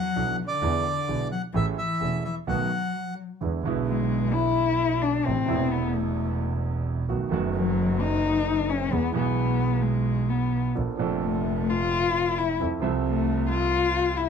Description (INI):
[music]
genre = tango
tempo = 130 BPM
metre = 4/4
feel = rubato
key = unclear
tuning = A4 = 440 Hz
[part]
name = bandoneon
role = melody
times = 0.0-3.1 s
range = D5 to F#5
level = -29 LUFS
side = right 2 dB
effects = none
[part]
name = dark cello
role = second line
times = 0.0-14.3 s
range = D3 to F4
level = -26 LUFS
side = left 7 dB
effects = none
[part]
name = warm concert grand piano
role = accompaniment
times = 0.2-14.3 s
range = E1 to E5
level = -29 LUFS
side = right 6 dB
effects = none
[part]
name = rich double bass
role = bass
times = 0.2-14.3 s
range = E1 to F2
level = -28 LUFS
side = right 2 dB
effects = none
[sound]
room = light reverb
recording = close, detailed microphones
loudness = -23 LUFS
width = side -7 dB against mid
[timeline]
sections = 0.0-3.4 A section; 3.4-14.3 B section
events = stop 2.9-3.4; cello solo 3.4-14.3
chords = 0.0 E7sus4; 0.6 E7; 1.5 Amaj7; 2.5 B7; 3.4 E7; 5.3 Am; 7.1 B7; 8.9 E; 10.8 Bbmaj7; 12.6 Fmaj7